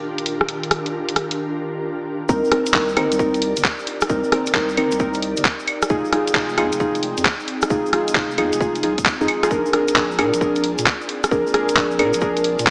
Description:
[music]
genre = UK garage, two-step garage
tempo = 133 BPM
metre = 4/4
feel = swing 66% on 16ths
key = C minor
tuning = A4 = 440 Hz
[part]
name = ethereal airy pad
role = sustained chords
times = 0.0-12.7 s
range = Eb3 to G5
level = -31 LUFS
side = equal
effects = ensemble chorus, built-in reverb, sidechain pumping
[part]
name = garage drum kit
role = drums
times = 0.2-12.7 s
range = claves, handclaps, hi-hat, rim click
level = -22 LUFS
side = equal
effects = low-pass filter on hats, studio reverb, low-pass filter on snare, low-pass filter on perc
[part]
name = deep mellow chord stab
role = stabs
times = 2.3-12.7 s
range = C4 to Bb4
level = -22 LUFS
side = equal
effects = chorus, tape echo
[part]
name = saturated sub bass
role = bass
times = 2.3-12.7 s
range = Eb1 to Bb2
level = -33 LUFS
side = equal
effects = none
[part]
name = electronic kick drum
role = drums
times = 2.3-12.7 s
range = none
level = -27 LUFS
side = equal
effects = studio reverb
[part]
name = tube shaker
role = percussion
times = 2.3-12.7 s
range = none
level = -38 LUFS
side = equal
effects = none
[sound]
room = moderate plate reverb, RT60 1.7 s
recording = heavily compressed radio sound, small speaker sound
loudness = -20 LUFS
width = mono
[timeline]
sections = 0.0-2.3 A section; 2.3-12.7 B section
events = break 1.4-2.3; drop 2.3-12.7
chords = 0.0 Ebmaj7; 2.3 Cm7; 5.7 Fm7; 9.5 Bb7

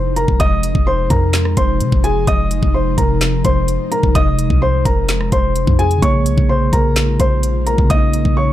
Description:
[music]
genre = hip hop, trap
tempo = 128 BPM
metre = 4/4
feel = half-time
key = F minor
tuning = A4 = 439 Hz
[part]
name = dark concert grand piano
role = melody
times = 0.0-8.5 s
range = Ab4 to Eb6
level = -19 LUFS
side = left 1 dB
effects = none
[part]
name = ethereal airy pad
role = sustained chords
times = 0.0-8.5 s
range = C3 to F4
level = -21 LUFS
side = equal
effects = ensemble chorus, built-in reverb
[part]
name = clean 808-style bass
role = bass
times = 0.0-8.5 s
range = F1 to C3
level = -18 LUFS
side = equal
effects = none
[part]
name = trap drum kit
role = drums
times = 0.2-8.4 s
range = handclaps, hi-hat, kick drum, rim click, snare drum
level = -17 LUFS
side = equal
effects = none
[part]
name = mellow tine electric piano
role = accompaniment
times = 6.0-8.5 s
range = Db3 to Ab4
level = -19 LUFS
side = right 2 dB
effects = fast stereo tremolo
[sound]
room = little or no reverb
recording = dark, warm production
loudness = -13 LUFS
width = side -13 dB against mid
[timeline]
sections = 0.0-8.5 A section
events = none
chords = 0.0 Fm7; 6.0 Bbm7

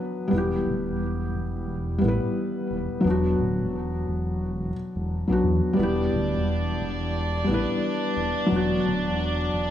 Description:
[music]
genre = trip hop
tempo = 88 BPM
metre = 4/4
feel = swing 58% on 16ths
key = E minor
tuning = A4 = 440 Hz
[part]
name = felt-muted upright piano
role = accompaniment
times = 0.0-9.7 s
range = F#3 to B4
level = -25 LUFS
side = left 1 dB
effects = tremolo, tape echo
[part]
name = dark detuned saw bass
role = bass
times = 0.3-9.7 s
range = D1 to E2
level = -27 LUFS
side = equal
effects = none
[part]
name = rich chamber violin section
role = sustained chords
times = 5.8-9.7 s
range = D4 to D5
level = -28 LUFS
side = right 2 dB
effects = none
[sound]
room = light reverb, studio ambience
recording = studio reverb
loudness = -23 LUFS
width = side -10 dB against mid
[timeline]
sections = 0.0-9.7 A section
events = none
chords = 0.3 Em; 3.0 Bm; 5.8 Em; 8.5 Bm

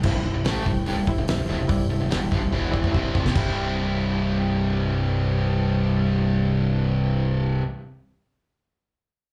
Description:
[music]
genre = classic rock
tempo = 145 BPM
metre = 4/4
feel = straight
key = C major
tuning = A4 = 440 Hz
[part]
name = reed electric piano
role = accompaniment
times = 0.0-7.6 s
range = E4 to G5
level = -34 LUFS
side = equal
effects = overdrive, fast tremolo, slapback echo
[part]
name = overdriven semi-hollow guitar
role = riff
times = 0.0-7.7 s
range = C2 to E4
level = -28 LUFS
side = equal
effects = slapback echo
[part]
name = tight distorted guitar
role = riff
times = 0.0-7.6 s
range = C2 to E4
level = -29 LUFS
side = equal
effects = distortion, slapback echo
[part]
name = growling fingered electric bass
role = bass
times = 0.0-7.6 s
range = C1 to A1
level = -29 LUFS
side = equal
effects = overdrive
[part]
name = damped 70s drum kit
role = drums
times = 0.0-3.5 s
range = crash cymbal, hi-hat, kick drum, snare drum, toms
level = -28 LUFS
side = equal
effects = none
[part]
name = tonewheel organ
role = sustained chords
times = 0.1-7.4 s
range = E4 to C5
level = -42 LUFS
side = equal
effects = none
[sound]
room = light reverb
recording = live gig heard through the venue's PA, club reverb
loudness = -23 LUFS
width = mono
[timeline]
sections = 0.0-3.4 A section; 3.4-6.7 B section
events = drum fill 2.5-3.4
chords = 0.0 C

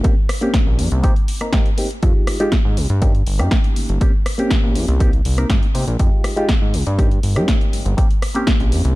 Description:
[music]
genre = filtered disco house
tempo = 121 BPM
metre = 4/4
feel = straight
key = Bb dorian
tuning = A4 = 440 Hz
[part]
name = reed electric piano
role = accompaniment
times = 0.0-8.9 s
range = Ab3 to Bb4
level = -23 LUFS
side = equal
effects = fast tremolo, phaser, sidechain pumping, low-pass filter
[part]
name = electronic kick drum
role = drums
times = 0.0-8.6 s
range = none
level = -17 LUFS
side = equal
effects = studio reverb
[part]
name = house drum kit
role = drums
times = 0.0-8.9 s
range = hi-hat, rim click, snare drum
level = -24 LUFS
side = equal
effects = sidechain pumping on hats, studio reverb
[part]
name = tube shaker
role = percussion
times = 0.0-8.9 s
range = none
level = barely audible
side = none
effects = none
[part]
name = fat analog bass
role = bass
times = 0.7-9.0 s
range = G1 to C3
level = -18 LUFS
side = equal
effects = tube saturation, sidechain pumping, low-pass filter
[sound]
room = little or no reverb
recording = dark, warm production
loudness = -15 LUFS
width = side -19 dB against mid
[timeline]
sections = 0.0-9.0 A section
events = none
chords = 0.0 Bbm69; 1.0 Cm7; 2.0 Fm9; 3.0 Eb7/G; 4.0 Bbm69; 5.0 Cm7; 6.0 Fm9; 7.0 Eb7/G; 8.0 Bbm69

